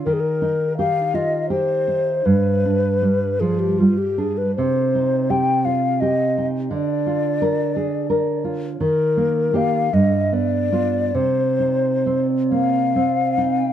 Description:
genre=romantic duo for flute and classical guitar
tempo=42-58 BPM (dotted quarters)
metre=6/8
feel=rubato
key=C minor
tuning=A4 = 440 Hz
part: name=nylon-string guitar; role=accompaniment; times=0.0-13.7 s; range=G2 to Bb4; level=-20 LUFS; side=right 2 dB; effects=none
part: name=mellow hollow concert flute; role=melody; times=0.1-13.7 s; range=F4 to G5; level=-21 LUFS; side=left 3 dB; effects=plate reverb, tape echo
room=moderate studio ambience, RT60 0.5 s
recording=none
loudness=-17 LUFS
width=side -10 dB against mid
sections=0.0-13.7 A section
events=none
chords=0.1 Eb; 2.2 G; 4.6 Cm; 6.7 Bb/D; 8.8 Eb; 9.9 G7; 11.1 Cm

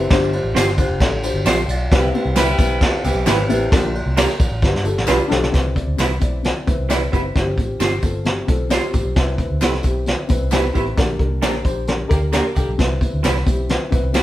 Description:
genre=uptempo 1960s-style soul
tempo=132 BPM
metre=4/4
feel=straight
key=C major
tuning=A4 = 440 Hz
part: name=dark upright piano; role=accompaniment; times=0.0-14.2 s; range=G2 to A5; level=-23 LUFS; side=left 2 dB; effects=none
part: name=vintage muted fingered electric bass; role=bass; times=0.0-14.2 s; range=F1 to G2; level=-22 LUFS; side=equal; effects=none
part: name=vintage brush drum kit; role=drums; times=0.1-14.2 s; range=hi-hat, kick drum, ride cymbal, snare drum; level=-19 LUFS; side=equal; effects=none
part: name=tambourine and handclaps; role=percussion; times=0.1-14.2 s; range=none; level=-32 LUFS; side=left 1 dB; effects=none
part: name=electric guitar through a small old amp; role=stabs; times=0.5-14.2 s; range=G3 to C5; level=-22 LUFS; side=right 3 dB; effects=none
part: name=bright saxophone section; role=second line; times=1.9-3.5, 12.1-12.7 s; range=E3 to D5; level=-26 LUFS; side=equal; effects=none
room=moderate stone room reverb, RT60 0.9 s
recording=band playing live in one room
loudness=-16 LUFS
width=side -14 dB against mid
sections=0.0-5.5 A section; 5.5-14.2 B section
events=upright piano fill 1.2-1.9, 8.3-9.2; drum fill 4.6-5.5; band accent 11.0-12.8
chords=0.1 G7sus4; 1.9 Cmaj7; 3.7 Bb6; 4.6 G7; 5.5 Cmaj7; 7.3 G7sus4; 9.2 Cmaj7; 11.0 Bb6; 12.8 Cmaj7

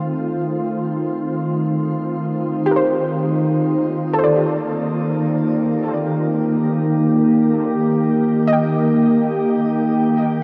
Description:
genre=ambient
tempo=free time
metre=none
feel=none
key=Eb lydian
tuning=A4 = 440 Hz
part: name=glassy FM pad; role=sustained chords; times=0.0-10.4 s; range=Eb3 to C5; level=-19 LUFS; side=equal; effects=ensemble chorus, built-in reverb, shimmer reverb
part: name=soft round pluck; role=arpeggios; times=2.7-10.4 s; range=G4 to G5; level=-25 LUFS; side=equal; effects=ensemble chorus, diffuse ambient delay, shimmer reverb
room=wet huge ambient reverb, RT60 8.5 s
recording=none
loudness=-18 LUFS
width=mono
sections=0.0-2.5 A section; 2.5-10.4 B section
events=none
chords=0.0 F7; 2.5 Ebmaj7

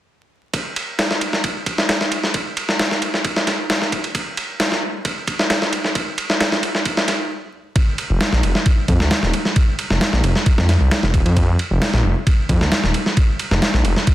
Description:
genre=breakbeat, breaks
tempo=133 BPM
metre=4/4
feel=straight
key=unclear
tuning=A4 = 440 Hz
part: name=dusty soul sampler-style drum kit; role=drums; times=0.5-14.1 s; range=kick drum, ride cymbal, snare drum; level=-17 LUFS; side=equal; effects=high-pass filter on cymbals, high-pass filter on kick, high-pass filter on snare, high-pass filter on room
part: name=detuned saw bass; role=bass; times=8.1-13.9 s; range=Eb1 to F2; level=-17 LUFS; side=equal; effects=none
room=light reverb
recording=dense, heavily limited modern master, vinyl crackle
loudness=-16 LUFS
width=side -14 dB against mid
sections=0.5-7.8 A section; 7.8-14.1 B section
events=stop 7.3-7.8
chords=none

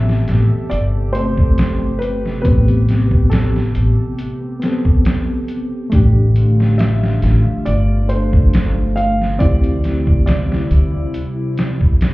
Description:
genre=trip hop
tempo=69 BPM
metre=4/4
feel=straight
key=A minor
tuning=A4 = 439 Hz
part: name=felt-muted upright piano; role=melody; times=0.0-12.0 s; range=A4 to F5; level=-25 LUFS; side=right 1 dB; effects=tape echo
part: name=reed electric piano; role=accompaniment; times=0.0-12.1 s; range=A3 to A4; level=-22 LUFS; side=equal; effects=overdrive, tremolo, tape echo
part: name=warbly tape-like pad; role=sustained chords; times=0.0-12.1 s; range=C3 to A4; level=-25 LUFS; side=equal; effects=chorus, built-in reverb
part: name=upright bass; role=bass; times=0.0-10.9 s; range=G1 to D2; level=-15 LUFS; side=equal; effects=none
part: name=trip hop sampler-style drum kit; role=drums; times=0.1-12.1 s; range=hi-hat, kick drum, snare drum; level=-16 LUFS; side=equal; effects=none
room=little or no reverb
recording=heard muffled through a wall, club reverb, EQ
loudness=-13 LUFS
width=side -19 dB against mid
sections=0.0-12.1 A section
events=none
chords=0.0 Am9; 5.9 F6/A; 9.4 D9sus4

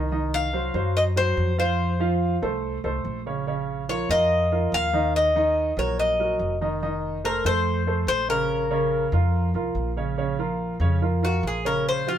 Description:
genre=latin, Cuban son and guajira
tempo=143 BPM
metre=4/4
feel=straight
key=Bb harmonic minor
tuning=A4 = 440 Hz
part: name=warm baby grand piano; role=arpeggios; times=0.0-12.2 s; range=Db3 to F5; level=-26 LUFS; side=right 3 dB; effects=none
part: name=upright bass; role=bass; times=0.0-12.2 s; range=F1 to Gb2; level=-26 LUFS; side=equal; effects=none
part: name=Cuban tres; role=melody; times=0.3-12.2 s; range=F4 to F5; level=-24 LUFS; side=left 2 dB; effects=none
room=light reverb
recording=band playing live in one room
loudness=-21 LUFS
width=side -10 dB against mid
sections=0.0-10.2 A section; 10.2-12.2 B section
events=Cuban tres solo 10.2-12.2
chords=0.1 Cdim; 1.8 F; 3.5 Bbm; 5.1 Ebm; 6.8 F7; 8.5 Bbm

